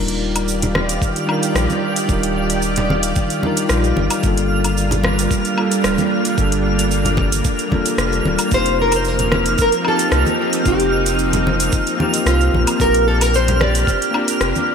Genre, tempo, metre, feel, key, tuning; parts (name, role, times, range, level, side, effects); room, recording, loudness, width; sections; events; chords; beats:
sunset chillout; 112 BPM; 4/4; straight; Eb lydian; A4 = 439 Hz
bell-like tine electric piano; accompaniment; 0.0-14.7 s; G3 to Bb4; -22 LUFS; moving between left 7 dB and right 6 dB; auto-pan, ping-pong delay
soft string machine; sustained chords; 0.0-14.7 s; Eb3 to D5; -22 LUFS; equal; ensemble chorus
warm sub bass; bass; 0.0-14.5 s; D1 to C2; -20 LUFS; equal
twinkling granular texture; texture; 0.7-14.7 s; F6; -25 LUFS; right 1 dB; built-in reverb, wide subtle chorus
smooth R&B drum kit; drums; 0.1-14.7 s; cabasa, hi-hat, rim click, woodblock; -23 LUFS; equal; gated reverb
congas; percussion; 0.6-14.7 s; -25 LUFS; equal
electronic kick drum; drums; 1.0-14.0 s; -20 LUFS; equal; overdrive
nylon-string guitar; melody; 8.5-14.7 s; F4 to D5; -19 LUFS; right 1 dB; analog chorus, ping-pong delay
moderate lush hall reverb, RT60 2.1 s; bright 1980s-style digital production; -15 LUFS; side -6 dB against mid
0.0-14.7 A section
0.0 Ebmaj9; 4.2 Gm7; 8.5 F7sus4; 12.8 Bb6
0.48 1.02 1.56 | 2.09 2.63 3.16 3.70 | 4.23 4.77 5.31 5.84 | 6.38 6.91 7.45 7.98 | 8.52 9.06 9.59 10.13 | 10.66 11.20 11.73 12.27 | 12.81 13.34 13.88 14.41